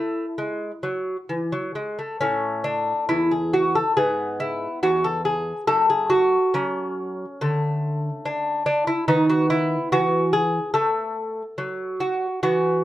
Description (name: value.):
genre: classical, baroque-style dance for lute.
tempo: 70 BPM.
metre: 4/4.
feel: uneven beats, rubato.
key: unclear.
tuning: A4 = 445 Hz.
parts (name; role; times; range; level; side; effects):
lute; solo; 0.0-12.8 s; E2 to A4; -20 LUFS; equal; none.
room: moderate studio reverb, RT60 0.6 s.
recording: none.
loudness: -20 LUFS.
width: side -14 dB against mid.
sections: 0.0-2.2 A section; 2.2-12.8 A section.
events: none.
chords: 0.0 E; 2.2 A5; 4.0 E/G#; 5.7 F#m; 7.4 D5; 9.1 B7/D#.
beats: 0.37 1.29 | 2.21 3.10 3.98 4.84 | 5.69 6.55 7.42 8.26 | 9.10 9.93 10.75 11.58 | 12.43.